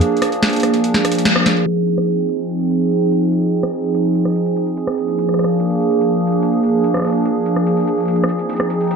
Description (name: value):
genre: IDM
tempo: 145 BPM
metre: 4/4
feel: straight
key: Ab lydian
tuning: A4 = 440 Hz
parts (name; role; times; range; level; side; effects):
- hollow soft pad; sustained chords; 0.0-9.0 s; F3 to Ab4; -15 LUFS; right 1 dB; chorus, vintage 12-bit sampler grit
- electro analog drum machine; drums; 0.0-9.0 s; hi-hat, rim click, snare drum; -20 LUFS; equal; digital delay
room: moderate plate reverb, RT60 1.3 s, digital ambience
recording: dark, warm production, low-pass filter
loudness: -15 LUFS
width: side -5 dB against mid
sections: 0.0-1.7 A section; 1.7-9.0 B section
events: band accent 1.3; filter sweep 1.7-9.0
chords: 0.0 Bb7; 1.7 Ab6; 5.0 Bb7; 8.3 Ab6